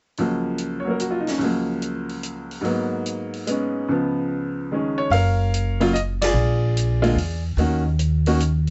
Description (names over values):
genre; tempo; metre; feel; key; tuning
jazz piano trio; 146 BPM; 3/4; swing 66% on 8ths; F# major; A4 = 439 Hz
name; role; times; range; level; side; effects
clear upright piano; melody; 0.2-8.4 s; C#2 to E#5; -25 LUFS; equal; none
open jazz drum kit; drums; 0.2-8.7 s; hi-hat, ride cymbal, snare drum; -36 LUFS; equal; none
upright bass; bass; 5.1-8.7 s; F#1 to E2; -22 LUFS; equal; none
room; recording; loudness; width
little or no reverb; nothing above 7.9 kHz; -22 LUFS; mono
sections
0.2-5.1 A section; 5.1-8.7 B section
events
band accent 6.1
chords
0.2 F#maj7/C#; 2.6 G#m9; 3.9 C#7; 5.1 F#maj7; 6.3 A#7; 7.6 D#m7